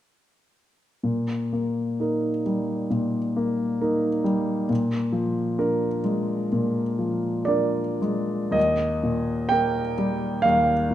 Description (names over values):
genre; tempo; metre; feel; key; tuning
classical, romantic nocturne for solo piano; 53-68 BPM; 4/4; rubato; Eb major; A4 = 440 Hz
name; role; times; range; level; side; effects
clear grand piano; solo; 1.0-10.9 s; Eb2 to G5; -22 LUFS; equal; none
room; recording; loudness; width
wet recital hall reverb, RT60 1.5 s; none; -22 LUFS; side -12 dB against mid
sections
1.0-8.6 A section; 8.6-10.9 B section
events
none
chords
1.0 Eb/Bb; 4.7 Bb7; 8.6 Eb